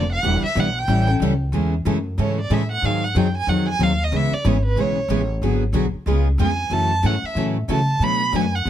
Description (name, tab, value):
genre	acoustic string swing (jazz manouche)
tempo	185 BPM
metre	4/4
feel	swing 60% on 8ths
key	A major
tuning	A4 = 436 Hz
part	warm violin	melody	0.0-8.7 s	B4 to B5	-24 LUFS	right 2 dB	none
part	picked steel-string acoustic guitar	accompaniment	0.0-8.7 s	B2 to A4	-24 LUFS	left 6 dB	none
part	picked steel-string acoustic guitar	accompaniment	0.0-8.7 s	B2 to B4	-26 LUFS	right 8 dB	none
part	upright bass	bass	0.0-8.7 s	E1 to C#3	-21 LUFS	equal	none
room	light reverb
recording	close, detailed microphones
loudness	-18 LUFS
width	side -11 dB against mid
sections	0.0-1.5 A section; 1.5-8.7 A section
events	violin solo 0.0-1.5, 1.5-8.7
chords	0.2 Em7; 0.9 A7; 1.5 Amaj7; 2.8 G#7; 4.1 C#m7; 5.4 G#m7b5; 6.1 C#7; 6.7 F#m7; 8.0 Bm7